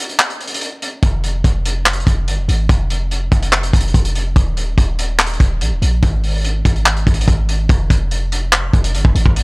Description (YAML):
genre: hip hop, trap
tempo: 144 BPM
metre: 4/4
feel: half-time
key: F minor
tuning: A4 = 440 Hz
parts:
  - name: vintage drum kit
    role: drums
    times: 0.1-9.4 s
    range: handclaps, hi-hat, kick drum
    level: -15 LUFS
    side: equal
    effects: none
  - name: warm 808-style bass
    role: bass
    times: 1.0-9.4 s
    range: Eb1 to Bb1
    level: -17 LUFS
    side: equal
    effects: none
room: little or no reverb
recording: dry, gritty hardware recording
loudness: -13 LUFS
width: side -31 dB against mid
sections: 0.0-7.7 A section; 7.7-9.4 B section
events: break 0.0-1.0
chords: none